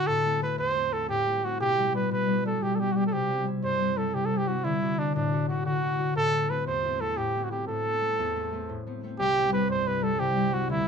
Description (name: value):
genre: celtic folk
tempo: 119 BPM (dotted quarters)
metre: 9/8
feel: straight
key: unclear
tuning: A4 = 441 Hz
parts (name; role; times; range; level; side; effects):
- warm trumpet; melody; 0.0-10.9 s; D4 to C5; -26 LUFS; right 2 dB; none
- concert harp; accompaniment; 0.0-10.9 s; C2 to F#4; -28 LUFS; left 2 dB; none
room: moderate small room reverb, RT60 0.5 s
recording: dark, warm production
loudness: -24 LUFS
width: side -6 dB against mid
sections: 0.0-9.2 A section; 9.2-10.9 A section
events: none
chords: 0.1 Am; 1.6 G/B; 3.1 C; 4.6 Dadd9; 6.2 Am; 7.7 Amadd9; 9.2 C